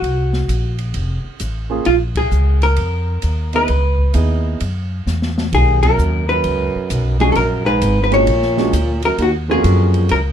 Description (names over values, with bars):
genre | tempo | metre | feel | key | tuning
jazz, small-group swing and bop | 131 BPM | 4/4 | swing 66% on 8ths | unclear | A4 = 438 Hz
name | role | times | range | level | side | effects
vintage hollow-body jazz guitar | melody | 0.0-10.2 s | F4 to C#5 | -18 LUFS | left 1 dB | none
upright bass | bass | 0.0-10.3 s | F1 to F#2 | -17 LUFS | equal | none
open jazz drum kit | drums | 0.0-10.2 s | hi-hat, kick drum, ride cymbal, snare drum | -28 LUFS | equal | none
warm grand piano | accompaniment | 1.7-10.1 s | Ab3 to Ab4 | -21 LUFS | right 5 dB | none
breathy baritone saxophone | second line | 5.5-10.2 s | D#2 to Bb2 | -21 LUFS | right 2 dB | none
room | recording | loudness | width
light reverb | dark, warm production | -14 LUFS | side -9 dB against mid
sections
0.0-10.3 A section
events
band accent 2.1, 5.8; drum fill 5.1-5.5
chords
0.0 Gb; 0.9 F; 1.9 Bbm7; 3.7 Dbm9; 4.6 Esus2; 5.5 Bmaj7; 7.4 Bb7alt; 9.2 Ebm9